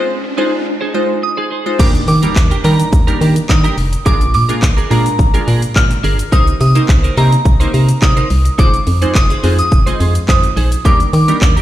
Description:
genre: dance-pop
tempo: 106 BPM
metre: 4/4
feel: straight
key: Eb major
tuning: A4 = 442 Hz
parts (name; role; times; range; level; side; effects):
- glassy wavetable pluck; accompaniment; 0.0-11.5 s; G3 to Eb5; -20 LUFS; equal; chorus, sidechain pumping
- riser and impact; sound effects; 0.0-4.1 s; none; -24 LUFS; equal; none
- clean electric guitar; riff; 0.2-11.6 s; D4 to C5; -23 LUFS; right 4 dB; analog chorus
- soft synth bell; melody; 1.2-11.6 s; Bb5 to F6; -19 LUFS; equal; chorus, phaser, tape echo
- organ-like FM bass; bass; 1.8-11.6 s; F1 to Eb3; -14 LUFS; equal; sidechain pumping
- pop drum kit; drums; 1.8-11.6 s; crash cymbal, handclaps, hi-hat, kick drum, shaker; -14 LUFS; equal; none
room: light reverb, digital ambience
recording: played on a big sound system in a bare room, stone room reverb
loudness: -10 LUFS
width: side -13 dB against mid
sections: 0.0-1.8 A section; 1.8-11.6 B section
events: break 0.0-1.8; riser 0.0-1.8; impact 1.8-4.1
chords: 0.0 Fm7; 1.8 Ebmaj7; 4.1 Bb7; 6.3 Cm7; 8.6 Fm7; 10.9 Ebmaj7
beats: 0.10 0.66 1.23 | 1.79 2.36 2.93 3.49 | 4.06 4.62 5.19 5.76 | 6.32 6.89 7.46 8.02 | 8.59 9.15 9.72 10.29 | 10.85 11.42

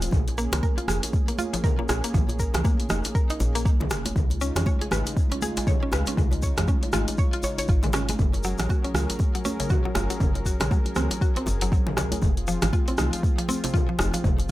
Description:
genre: afro house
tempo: 119 BPM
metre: 4/4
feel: swing 59% on 16ths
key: Bb minor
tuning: A4 = 440 Hz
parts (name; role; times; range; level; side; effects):
- warm analog pad; sustained chords; 0.0-14.5 s; Db3 to Bb4; -34 LUFS; equal; chorus, sidechain pumping
- woody FM bass; bass; 0.0-14.5 s; F1 to F2; -28 LUFS; equal; sidechain pumping
- deep house drum kit; drums; 0.0-14.5 s; hi-hat, rim click, toms; -30 LUFS; equal; none
- congas; percussion; 0.0-14.4 s; none; -34 LUFS; right 3 dB; none
- djembe; percussion; 0.0-14.5 s; none; -35 LUFS; left 1 dB; none
- tube shaker; percussion; 0.0-14.4 s; none; -38 LUFS; left 3 dB; none
- electronic kick drum; drums; 0.1-14.4 s; none; -23 LUFS; equal; none
- mallet-like synth pluck; arpeggios; 0.4-14.4 s; C3 to Db5; -31 LUFS; equal; chorus, cassette tape, sidechain pumping, digital delay
room: little or no reverb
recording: none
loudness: -22 LUFS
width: side -16 dB against mid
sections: 0.0-14.5 A section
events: none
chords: 0.1 Bbm7; 4.2 Db7; 8.2 Gbmaj7; 12.2 Fm7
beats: | 0.13 0.63 1.13 1.64 | 2.14 2.65 3.15 3.65 | 4.16 4.66 5.17 5.67 | 6.18 6.68 7.18 7.69 | 8.19 8.70 9.20 9.71 | 10.21 10.71 11.22 11.72 | 12.23 12.73 13.23 13.74 | 14.24

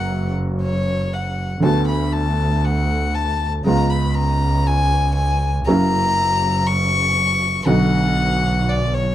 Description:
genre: tango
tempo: free time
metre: none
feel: none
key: unclear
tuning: A4 = 440 Hz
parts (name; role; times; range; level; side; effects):
- warm violin; second line; 0.0-9.1 s; C#5 to C#6; -21 LUFS; left 3 dB; none
- clear upright piano; accompaniment; 0.0-9.1 s; B1 to F#4; -21 LUFS; right 1 dB; none
- bright double bass; bass; 0.0-9.1 s; F#1 to D2; -20 LUFS; right 1 dB; none
room: moderate studio reverb, RT60 0.8 s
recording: dark, warm production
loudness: -16 LUFS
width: side -12 dB against mid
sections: 0.0-9.1 A section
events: violin solo 0.0-9.1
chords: 0.0 F#; 1.6 D6; 3.7 C#7; 5.7 F#7; 7.7 Bm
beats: free time

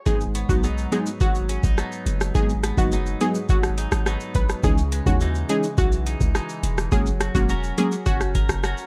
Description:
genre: dancehall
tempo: 105 BPM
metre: 4/4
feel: straight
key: G# minor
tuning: A4 = 440 Hz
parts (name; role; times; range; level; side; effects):
- analog pluck; melody; 0.1-8.5 s; F#4 to B4; -31 LUFS; equal; chorus, tape echo
- wavetable chord stab; accompaniment; 0.1-8.0 s; E3 to D#4; -28 LUFS; equal; sidechain pumping
- clean electric guitar; arpeggios; 0.1-8.9 s; G#2 to A#4; -33 LUFS; equal; analog chorus, tape echo
- warm 808-style bass; bass; 0.1-8.7 s; E1 to D#2; -27 LUFS; equal; none
- booming analog drum machine; drums; 0.1-8.9 s; hi-hat, kick drum, rim click, shaker; -25 LUFS; equal; none
- tube shaker; percussion; 0.1-8.9 s; none; -47 LUFS; equal; none
room: little or no reverb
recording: dark, warm production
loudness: -22 LUFS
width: mono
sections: 0.0-8.9 A section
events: none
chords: 0.1 G#m7; 4.6 C#madd9; 6.9 F#add9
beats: | 0.06 0.63 1.21 1.78 | 2.35 2.92 3.49 4.06 | 4.63 5.21 5.78 6.35 | 6.92 7.49 8.06 8.63

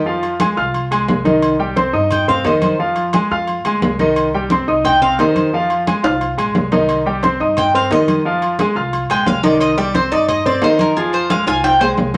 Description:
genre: latin, salsa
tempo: 176 BPM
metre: 4/4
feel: straight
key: unclear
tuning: A4 = 440 Hz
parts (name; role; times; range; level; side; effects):
- Cuban tres; melody; 0.0, 2.1-2.8, 4.8-5.5, 7.6-11.9 s; Ab4 to Ab5; -20 LUFS; equal; none
- upright bass; bass; 0.0-12.2 s; Bb1 to G2; -29 LUFS; equal; none
- clear baby grand piano; accompaniment; 0.1-12.2 s; Eb3 to F6; -18 LUFS; equal; none
- congas; percussion; 0.1-12.2 s; none; -24 LUFS; equal; none
- agogo bells and timbales; percussion; 0.2-12.2 s; none; -25 LUFS; equal; none
room: wet studio reverb, RT60 0.6 s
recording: none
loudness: -16 LUFS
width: mono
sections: 0.0-12.2 A section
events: Cuban tres solo 0.0-12.2; drum fill 6.0-6.9, 11.5-12.2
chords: 0.1 Fm; 1.4 Cm; 2.8 Fm; 4.2 Cm; 5.5 Fm; 6.9 Cm; 8.2 Fm; 9.6 Cm; 11.0 Fm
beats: | 0.06 0.40 0.74 1.09 | 1.43 1.77 2.11 2.45 | 2.79 3.14 3.48 3.82 | 4.16 4.50 4.84 5.18 | 5.53 5.87 6.21 6.55 | 6.89 7.23 7.57 7.91 | 8.25 8.59 8.93 9.27 | 9.61 9.95 10.29 10.62 | 10.96 11.30 11.64 11.98

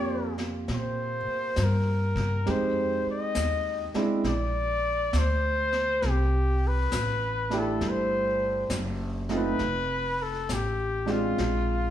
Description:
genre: jazz ballad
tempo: 67 BPM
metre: 4/4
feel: swing 66% on 8ths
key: unclear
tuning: A4 = 440 Hz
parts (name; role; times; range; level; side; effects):
- warm trumpet; melody; 0.0-11.9 s; F4 to Eb5; -28 LUFS; left 2 dB; none
- warm concert grand piano; accompaniment; 0.0-11.9 s; Ab3 to G4; -30 LUFS; right 2 dB; none
- upright bass; bass; 0.0-11.9 s; F1 to Bb2; -29 LUFS; equal; none
- vintage brush drum kit; drums; 0.4-11.9 s; brushed snare drum, hi-hat, kick drum, snare drum; -37 LUFS; left 2 dB; none
room: wet large studio reverb, RT60 1.1 s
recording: band playing live in one room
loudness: -25 LUFS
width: side -11 dB against mid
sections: 0.0-11.9 A section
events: none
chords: 0.0 Eb69 (rootless); 2.5 Fm7; 4.2 Bbadd9; 6.0 C6; 9.6 F; 11.4 Bb9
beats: 0.68 1.57 | 2.46 3.35 4.25 5.14 | 6.03 6.92 7.81 8.70 | 9.59 10.48 11.37

